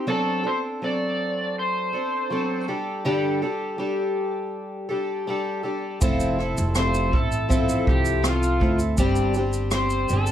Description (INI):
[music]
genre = acoustic pop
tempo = 81 BPM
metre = 4/4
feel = straight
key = unclear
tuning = A4 = 438 Hz
[part]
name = fingerpicked twelve-string acoustic guitar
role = accompaniment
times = 0.0-10.3 s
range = G2 to A4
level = -25 LUFS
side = left 1 dB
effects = none
[part]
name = overdriven slide guitar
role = melody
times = 0.1-10.3 s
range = F4 to D5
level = -26 LUFS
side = equal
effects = none
[part]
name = upright bass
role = bass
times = 6.0-10.3 s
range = F1 to D2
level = -25 LUFS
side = right 1 dB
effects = none
[part]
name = jazz brush drum kit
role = drums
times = 6.0-10.3 s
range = kick drum, rim click, shaker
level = -24 LUFS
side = right 1 dB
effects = none
[sound]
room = light reverb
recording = none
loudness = -21 LUFS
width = side -10 dB against mid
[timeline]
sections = 0.0-6.0 A section; 6.0-10.3 B section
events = none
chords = 0.1 D7/F#; 2.7 Gsus2; 6.0 Fmaj7; 9.0 Gsus4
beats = | 0.07 0.81 1.56 2.31 | 3.05 3.79 4.54 5.28 | 6.02 6.76 7.50 8.25 | 8.99 9.72